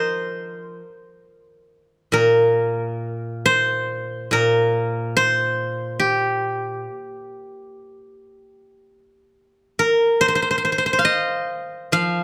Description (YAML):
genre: chinese traditional, Chinese solo plucked strings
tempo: 70 BPM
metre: 4/4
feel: uneven beats, rubato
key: unclear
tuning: A4 = 438 Hz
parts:
  - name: steel-string zither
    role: solo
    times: 0.0-12.2 s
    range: Bb2 to F5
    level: -21 LUFS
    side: equal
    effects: none
room: light reverb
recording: close, detailed microphones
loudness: -20 LUFS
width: mono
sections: 0.0-1.7 A section; 1.7-12.2 B section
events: none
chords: none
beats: 0.80 | 1.70 2.58 3.46 4.33 | 5.17 6.01 6.85 7.68 | 8.52 9.37 10.21 11.07 | 11.93